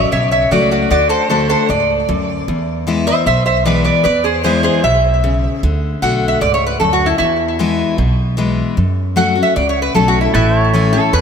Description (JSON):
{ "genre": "honky-tonk and classic country", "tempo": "153 BPM", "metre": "4/4", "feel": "straight", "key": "unclear", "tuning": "A4 = 441 Hz", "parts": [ { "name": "lap resonator guitar", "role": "melody", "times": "0.0-11.2 s", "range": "E4 to F#5", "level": "-15 LUFS", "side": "right 1 dB", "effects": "wide subtle chorus, ping-pong delay" }, { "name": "picked steel-string acoustic guitar", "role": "accompaniment", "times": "0.0-11.2 s", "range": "E2 to F#4", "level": "-18 LUFS", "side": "left 4 dB", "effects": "none" }, { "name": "upright bass", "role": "bass", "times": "0.0-11.2 s", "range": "A1 to F#2", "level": "-18 LUFS", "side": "right 1 dB", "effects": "none" }, { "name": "pedal steel guitar", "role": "sustained chords", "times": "10.3-11.2 s", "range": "A4 to E5", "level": "-17 LUFS", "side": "right 2 dB", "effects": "none" } ], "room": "moderate plate reverb, RT60 3.2 s", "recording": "dreamy mix soaked in reverb", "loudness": "-12 LUFS", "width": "side -7 dB against mid", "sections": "0.0-11.2 A section", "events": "resonator guitar played with a steel bar solo 0.0-11.2", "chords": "0.0 F#m; 0.9 D; 2.5 E; 5.6 D; 7.2 E; 8.8 F#m; 10.3 A", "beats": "0.12 0.52 | 0.91 1.30 1.70 2.09 | 2.48 2.88 3.27 3.66 | 4.05 4.45 4.84 5.23 | 5.63 6.02 6.41 6.81 | 7.20 7.59 7.99 8.38 | 8.77 9.16 9.56 9.95 | 10.34 10.74 11.13" }